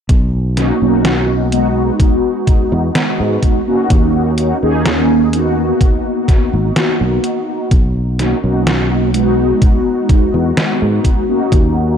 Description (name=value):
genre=vaporwave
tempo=63 BPM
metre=4/4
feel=straight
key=E lydian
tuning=A4 = 442 Hz
part: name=fretless electric bass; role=bass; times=0.1-12.0 s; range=G#1 to G#2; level=-16 LUFS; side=equal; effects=tube saturation, analog chorus
part: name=detuned 8-bit digital drum machine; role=drums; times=0.1-11.7 s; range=hi-hat, snare drum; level=-19 LUFS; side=equal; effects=none
part: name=electronic kick drum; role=drums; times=0.1-11.7 s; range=none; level=-12 LUFS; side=equal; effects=none
part: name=mellow synth brass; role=accompaniment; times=0.6-11.9 s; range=G#3 to G#4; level=-15 LUFS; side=equal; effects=phaser, ensemble chorus, analog delay
room=light reverb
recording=none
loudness=-12 LUFS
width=side -8 dB against mid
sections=0.1-12.0 A section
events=none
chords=0.1 Bmaj9; 2.0 Emaj9 (rootless); 3.9 D#m7; 5.8 G#m9 (rootless); 7.7 Bmaj9; 9.6 Emaj9 (rootless)